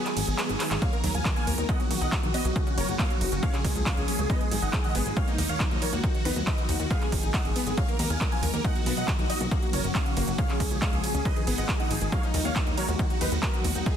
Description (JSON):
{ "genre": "uplifting trance", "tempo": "138 BPM", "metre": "4/4", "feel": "straight", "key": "unclear", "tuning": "A4 = 443 Hz", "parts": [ { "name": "big supersaw lead", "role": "melody", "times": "0.0-14.0 s", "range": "Cb4 to Ab5", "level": "-32 LUFS", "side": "equal", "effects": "phaser, sidechain pumping, ping-pong delay" }, { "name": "warm concert grand piano", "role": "second line", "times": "0.0-14.0 s", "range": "Eb4 to Ab5", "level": "-39 LUFS", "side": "equal", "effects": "sidechain pumping, digital delay" }, { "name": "big-room dance drum kit", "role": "drums", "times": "0.1-13.9 s", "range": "handclaps, hi-hat, ride cymbal", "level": "-32 LUFS", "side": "right 2 dB", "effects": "overdrive, sidechain pumping on hats, sidechain pumping on cymbals" }, { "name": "plucky analog bass", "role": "bass", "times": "0.2-13.8 s", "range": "Gb1 to Eb2", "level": "-30 LUFS", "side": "equal", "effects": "sidechain pumping" }, { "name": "analog pluck", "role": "arpeggios", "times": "0.8-13.9 s", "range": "Db3 to D#4", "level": "-35 LUFS", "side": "left 3 dB", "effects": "chorus, sidechain pumping, digital delay" }, { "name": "electronic kick drum", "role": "drums", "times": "0.8-13.9 s", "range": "none", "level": "-27 LUFS", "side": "equal", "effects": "overdrive" } ], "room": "little or no reverb", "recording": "dense, heavily limited modern master", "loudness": "-24 LUFS", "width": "side -9 dB against mid", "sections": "0.0-14.0 A section", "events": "break 0.0-0.8; drum fill 0.6", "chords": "0.0 Abm; 0.8 Ebmadd9; 1.7 B; 2.6 Gb; 3.4 Db; 4.3 Abm; 5.2 Ebmadd9; 6.0 B/D#; 6.9 Abm; 7.8 Ebmadd9; 8.6 B; 9.5 Gb; 10.4 Db; 11.3 Abm; 12.1 Ebmadd9; 13.0 B/D#" }